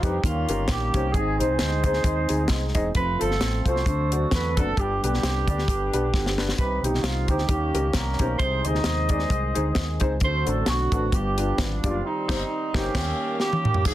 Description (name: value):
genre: uptempo gospel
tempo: 132 BPM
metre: 4/4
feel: swing 55% on 8ths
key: unclear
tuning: A4 = 440 Hz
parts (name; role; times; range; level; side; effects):
- mellow horn section; melody; 0.0-13.9 s; G3 to Eb5; -27 LUFS; right 2 dB; none
- warm upright piano; accompaniment; 0.0-13.9 s; G2 to Eb5; -30 LUFS; left 2 dB; none
- dark French horn section; sustained chords; 0.0-13.8 s; D3 to F4; -37 LUFS; right 2 dB; none
- tonewheel organ; sustained chords; 0.0-13.9 s; D3 to C5; -35 LUFS; right 2 dB; none
- fingered electric bass; bass; 0.0-13.9 s; E1 to F2; -27 LUFS; equal; none
- tight funk drum kit; drums; 0.0-13.9 s; crash cymbal, hi-hat, kick drum, snare drum, toms; -25 LUFS; equal; none
- tambourine; percussion; 13.9 s; none; -37 LUFS; right 6 dB; none
room: light reverb, small room ambience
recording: dense, heavily limited modern master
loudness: -21 LUFS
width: side -14 dB against mid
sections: 0.0-13.9 A section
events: drum fill 6.1-6.6, 13.4-13.9; band accent 12.0-13.9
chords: 0.2 Eb7; 1.1 Ab; 3.0 F; 3.9 D7; 4.8 G; 6.6 Cm; 7.5 Eb7; 8.4 Ab/C; 10.2 D7; 11.1 G7; 12.0 Cm/G; 12.9 Eb7